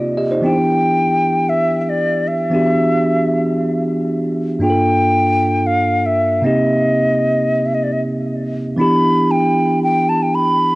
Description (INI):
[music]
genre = amapiano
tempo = 115 BPM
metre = 4/4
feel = straight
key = unclear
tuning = A4 = 445 Hz
[part]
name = bell-like tine electric piano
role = accompaniment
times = 0.0-10.8 s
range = G2 to Eb5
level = -16 LUFS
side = right 1 dB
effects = cassette tape
[part]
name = hollow concert flute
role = melody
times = 0.4-10.8 s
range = D5 to B5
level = -17 LUFS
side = equal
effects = cassette tape, analog delay
[sound]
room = moderate spring reverb, RT60 1.8 s, small room ambience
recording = home recording on cassette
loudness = -14 LUFS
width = side -20 dB against mid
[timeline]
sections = 0.0-8.8 A section; 8.8-10.8 B section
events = drop 8.8-10.8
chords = 0.4 Em9; 4.6 Gm9; 6.4 Cm7; 8.8 Em7